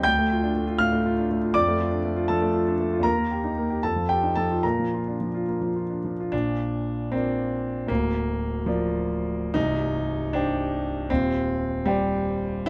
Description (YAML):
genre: classical, romantic character piece for solo piano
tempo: 66-83 BPM (dotted quarters)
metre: 6/8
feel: rubato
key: Bb major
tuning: A4 = 440 Hz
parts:
  - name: warm concert grand piano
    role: solo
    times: 0.0-12.7 s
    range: C1 to G6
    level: -25 LUFS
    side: equal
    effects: none
room: little or no reverb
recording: close, detailed microphones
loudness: -25 LUFS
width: mono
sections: 0.0-6.3 A section; 6.3-12.7 A section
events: none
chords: 0.0 Dm; 1.5 Dm/F; 3.0 Eb; 3.8 F7; 4.6 Bb; 7.9 Bb/D; 9.5 Cm; 11.1 Cm/Eb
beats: | 0.04 0.80 | 1.53 2.28 | 3.03 3.82 | 4.63 5.47 | 6.32 7.12 | 7.89 8.67 | 9.55 10.33 | 11.10 11.86 | 12.68